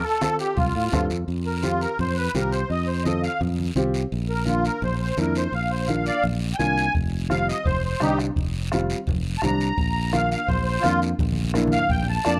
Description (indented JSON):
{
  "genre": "latin, cumbia",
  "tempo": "169 BPM",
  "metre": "4/4",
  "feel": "straight",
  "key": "F major",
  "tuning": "A4 = 440 Hz",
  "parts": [
    { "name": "musette accordion", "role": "melody", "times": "0.0-12.4 s", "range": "Eb4 to Bb5", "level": "-28 LUFS", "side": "equal", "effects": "plate reverb" },
    { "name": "dark upright piano", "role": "accompaniment", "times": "0.2-12.4 s", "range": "G3 to A4", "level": "-30 LUFS", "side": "equal", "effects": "plate reverb" },
    { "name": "bombo", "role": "percussion", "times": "0.2-1.1, 6.9-12.4 s", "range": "none", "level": "-30 LUFS", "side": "equal", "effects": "none" },
    { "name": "congas", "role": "percussion", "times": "0.2-12.1 s", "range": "none", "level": "-35 LUFS", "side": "equal", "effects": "none" },
    { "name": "guiro", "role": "percussion", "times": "0.2-12.4 s", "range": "none", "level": "-40 LUFS", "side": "equal", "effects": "none" },
    { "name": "fingered electric bass", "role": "bass", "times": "0.6-12.4 s", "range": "F1 to A2", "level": "-28 LUFS", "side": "equal", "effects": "none" }
  ],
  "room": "light reverb",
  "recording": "rough home demo mix",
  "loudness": "-24 LUFS",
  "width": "mono",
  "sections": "0.0-1.3 A section; 1.3-12.4 B section",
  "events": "accordion solo 1.3-12.4; drum fill 11.2-12.4",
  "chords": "0.0 F; 4.1 Bb; 7.0 Fsus2; 9.8 Bb"
}